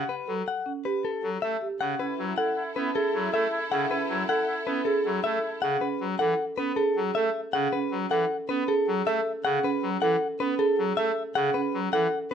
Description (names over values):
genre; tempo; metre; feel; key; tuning
classical, minimalist pattern music; 157 BPM; 5/4; straight; F# minor; A4 = 445 Hz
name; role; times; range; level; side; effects
direct-recorded clean electric guitar; melody; 0.0-12.3 s; A4 to F#5; -29 LUFS; left 6 dB; none
pipe organ, trumpet; accompaniment; 0.0-12.3 s; C#3 to B3; -32 LUFS; equal; none
marimba with soft mallets; arpeggios; 0.3-12.3 s; C#4 to A4; -28 LUFS; right 4 dB; none
warm oboe; second line; 2.0-5.6 s; E4; -33 LUFS; right 1 dB; none
clear symphonic string section; sustained chords; 2.0-5.6 s; E4 to A4; -36 LUFS; right 1 dB; none
room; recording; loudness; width
light reverb; none; -24 LUFS; side -8 dB against mid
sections
0.0-2.0 A section; 2.0-12.3 B section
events
none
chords
0.0 A9; 2.0 F#m11